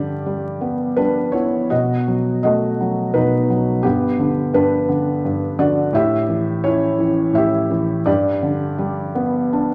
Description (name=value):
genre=classical, lyrical solo piano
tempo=85 BPM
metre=3/4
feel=uneven beats, rubato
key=unclear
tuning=A4 = 440 Hz
part: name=felt-muted upright piano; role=solo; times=0.0-9.7 s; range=G2 to E5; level=-19 LUFS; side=equal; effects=none
room=wet recital hall reverb, RT60 1.6 s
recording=vinyl crackle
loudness=-19 LUFS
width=mono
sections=0.0-9.7 A section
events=none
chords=0.0 Em7/G; 1.7 B7; 3.8 G; 5.9 A7; 8.1 G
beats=0.26 0.97 | 1.71 2.43 3.14 | 3.84 4.54 5.24 | 5.93 6.64 7.35 | 8.07 8.79 9.54